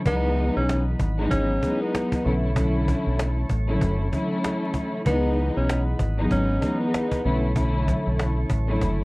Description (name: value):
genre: hip hop, boom-bap hip-hop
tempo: 96 BPM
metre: 4/4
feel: swing 60% on 16ths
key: C# minor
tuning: A4 = 436 Hz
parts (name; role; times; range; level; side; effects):
- percussive tonewheel organ; sustained chords; 0.0-9.0 s; E3 to C#6; -36 LUFS; equal; slow rotary speaker, high-pass filter, low-pass filter
- breathy tenor saxophone; melody; 0.1-7.5 s; B3 to C#4; -26 LUFS; equal; high-pass filter, low-pass filter, slapback echo
- dark studio string section; accompaniment; 0.1-9.0 s; D3 to E4; -25 LUFS; left 1 dB; cassette tape, high-pass filter, low-pass filter
- deep dub fingered electric bass; bass; 0.1-9.0 s; F#1 to C#2; -24 LUFS; equal; none
- cajon; drums; 0.1-9.0 s; none; -28 LUFS; equal; none
room: light reverb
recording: worn, warbling old tape, cassette tape, vinyl crackle, warbly pitch drift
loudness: -21 LUFS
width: side -24 dB against mid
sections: 0.0-9.0 A section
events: none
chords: 0.1 C#m11; 2.2 Bm11; 5.1 C#m11; 7.2 Bm11